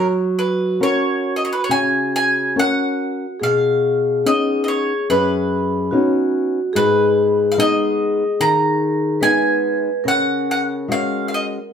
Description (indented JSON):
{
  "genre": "fado-style ballad",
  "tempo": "68-75 BPM",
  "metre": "4/4",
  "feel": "rubato",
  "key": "F# major",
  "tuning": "A4 = 439 Hz",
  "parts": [
    { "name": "bowl-back mandolin", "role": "melody", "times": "0.0-11.5 s", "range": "B4 to A#5", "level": "-20 LUFS", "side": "right 2 dB", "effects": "none" },
    { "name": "vibraphone with medium mallets", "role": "second line", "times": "0.0-11.7 s", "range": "F#4 to B4", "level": "-20 LUFS", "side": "left 1 dB", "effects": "none" },
    { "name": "flamenco guitar", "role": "accompaniment", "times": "0.0-11.6 s", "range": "F#2 to A#4", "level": "-21 LUFS", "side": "left 2 dB", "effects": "none" }
  ],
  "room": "wet studio reverb, RT60 0.7 s",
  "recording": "band playing live in one room",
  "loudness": "-16 LUFS",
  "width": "side -7 dB against mid",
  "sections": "0.0-11.7 A section",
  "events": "none",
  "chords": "0.0 F#; 3.4 Badd9; 6.8 G#m; 10.1 C#sus4"
}